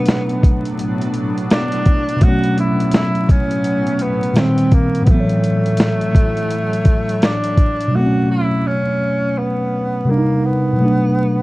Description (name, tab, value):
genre	lo-fi hip hop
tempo	84 BPM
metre	4/4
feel	swing 64% on 16ths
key	A major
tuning	A4 = 444 Hz
part	breathy tenor saxophone	melody	0.0-11.4 s	A3 to F#4	-22 LUFS	equal	none
part	mellow tine electric piano	accompaniment	0.0-11.4 s	A2 to C#5	-17 LUFS	equal	medium stereo tremolo
part	granular cloud pad	sustained chords	0.0-7.9 s	A2 to C#5	-26 LUFS	equal	built-in reverb
part	dusty soul sampler-style drum kit	drums	0.1-7.9 s	hi-hat, kick drum, snare drum	-14 LUFS	equal	none
room	light reverb, digital ambience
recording	dark, warm production, vinyl crackle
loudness	-14 LUFS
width	side -20 dB against mid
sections	0.0-7.9 A section; 7.9-11.4 B section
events	none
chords	0.0 Bm7; 2.2 A69; 4.4 Cm7; 5.1 A6; 7.9 A69; 10.1 Cm7; 10.8 Bm7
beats	0.07 0.78 1.50 | 2.21 2.93 3.64 4.36 | 5.07 5.78 6.50 7.21 | 7.93 8.64 9.36 10.07 | 10.78